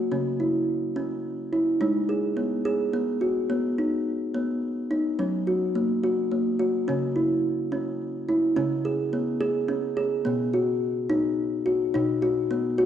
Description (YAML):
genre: world meditative, meditative tuned percussion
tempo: 71 BPM (dotted quarters)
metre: 6/8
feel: straight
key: C# dorian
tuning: A4 = 437 Hz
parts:
  - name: kalimba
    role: solo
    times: 0.0-12.9 s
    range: B2 to G#4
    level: -23 LUFS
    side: equal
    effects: none
room: wet concert hall reverb, RT60 1.7 s, studio ambience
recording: none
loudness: -23 LUFS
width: side -9 dB against mid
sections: 0.0-6.9 A section; 6.9-12.9 B section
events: none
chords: 0.1 C#m; 1.8 G#m; 3.5 B; 5.2 F#; 6.9 C#m; 10.3 B